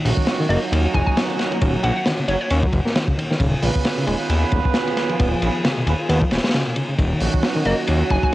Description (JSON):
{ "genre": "breakbeat, breaks", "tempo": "134 BPM", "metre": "4/4", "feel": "swing 56% on 16ths", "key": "Eb minor", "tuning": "A4 = 440 Hz", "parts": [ { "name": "muted studio string section", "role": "sustained chords", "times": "0.0-8.3 s", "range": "Eb3 to Ab4", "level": "-29 LUFS", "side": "left 2 dB", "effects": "sidechain pumping" }, { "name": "barky reed electric piano", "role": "riff", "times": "0.0-7.7 s", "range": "Cb3 to Db4", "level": "-25 LUFS", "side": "equal", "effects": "overdrive, fast tremolo, tube saturation, vintage 12-bit sampler grit" }, { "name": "warm horn section", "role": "stabs", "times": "0.0-8.3 s", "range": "Gb3 to Cb5", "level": "-26 LUFS", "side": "right 7 dB", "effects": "analog delay" }, { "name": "fat analog bass", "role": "bass", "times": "0.1-8.2 s", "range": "Eb1 to Eb2", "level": "-20 LUFS", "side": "equal", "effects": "none" }, { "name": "crunchy breakbeat drum kit", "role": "drums", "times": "0.1-8.3 s", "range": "hi-hat, kick drum, ride cymbal, snare drum", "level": "-21 LUFS", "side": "equal", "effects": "cassette tape" }, { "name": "hollow square pluck", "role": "melody", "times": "0.5-2.5, 7.7-8.3 s", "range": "Db5 to Ab5", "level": "-26 LUFS", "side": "equal", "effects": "chorus, AM radio sound, cassette tape, analog delay" } ], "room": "light reverb, small room ambience", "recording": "home recording on cassette", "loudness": "-17 LUFS", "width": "side -16 dB against mid", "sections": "0.0-8.3 A section", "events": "none", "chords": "0.0 Ebm7; 3.4 Db7/Eb; 7.0 Ebm7" }